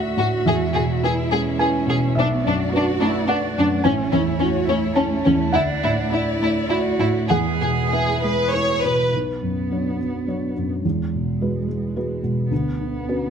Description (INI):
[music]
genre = neoclassical piano and strings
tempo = 106 BPM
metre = 3/4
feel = rubato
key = B dorian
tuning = A4 = 439 Hz
[part]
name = warm cello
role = second line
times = 0.0-13.3 s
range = G#3 to G#4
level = -26 LUFS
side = right 4 dB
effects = none
[part]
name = felt-muted upright piano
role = accompaniment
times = 0.0-13.3 s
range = A1 to A5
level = -21 LUFS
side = equal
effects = none
[part]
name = rich chamber string section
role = sustained chords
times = 0.0-9.1 s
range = G#3 to E5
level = -29 LUFS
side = left 1 dB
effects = none
[part]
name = rich chamber violin section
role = melody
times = 0.2-9.1 s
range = C#4 to C#5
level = -22 LUFS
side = left 2 dB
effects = none
[sound]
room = light reverb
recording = close, detailed microphones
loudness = -18 LUFS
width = side -7 dB against mid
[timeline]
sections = 0.0-9.1 A section; 9.1-13.3 B section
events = none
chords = 0.5 E; 2.2 Bm7; 3.8 Amaj7; 5.5 Dadd9; 7.3 E; 9.1 Bmadd9; 10.8 Eadd9; 12.5 Bmadd9/D